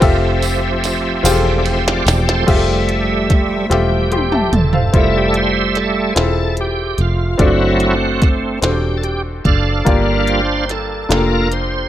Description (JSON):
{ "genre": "slow gospel", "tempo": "49 BPM (dotted quarters)", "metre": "6/8", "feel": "straight", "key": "F major", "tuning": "A4 = 439 Hz", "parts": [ { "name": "bright baby grand piano", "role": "accompaniment", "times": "0.0-11.9 s", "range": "G2 to C6", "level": "-20 LUFS", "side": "left 3 dB", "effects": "none" }, { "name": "bright tonewheel organ", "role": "sustained chords", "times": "0.0-11.9 s", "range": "F3 to F5", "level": "-18 LUFS", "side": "right 2 dB", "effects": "slow rotary speaker, overdrive, chorus vibrato" }, { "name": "fingered electric bass", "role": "bass", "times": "0.0-11.9 s", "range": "E1 to G1", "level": "-19 LUFS", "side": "equal", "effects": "none" }, { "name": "glitchy drum kit", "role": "drums", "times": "0.0-11.7 s", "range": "crash cymbal, hi-hat, kick drum, ride cymbal, snare drum, toms", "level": "-17 LUFS", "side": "equal", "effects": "none" }, { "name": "tambourine", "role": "percussion", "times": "0.4-2.5 s", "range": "none", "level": "-26 LUFS", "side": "right 7 dB", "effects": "none" }, { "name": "dark studio string section", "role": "sustained chords", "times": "2.5-4.9 s", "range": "F3 to E5", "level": "-25 LUFS", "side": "right 1 dB", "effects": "none" } ], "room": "light reverb", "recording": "none", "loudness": "-13 LUFS", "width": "side -12 dB against mid", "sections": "0.0-2.5 A section; 2.5-4.9 B section; 4.9-11.9 C section", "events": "drum fill 1.3-2.5, 3.7-4.9; tonewheel organ solo 2.5-4.9, 4.9-11.9", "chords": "0.0 Fmaj9; 4.9 Fmaj7; 7.4 D7/F#; 9.9 Gm7" }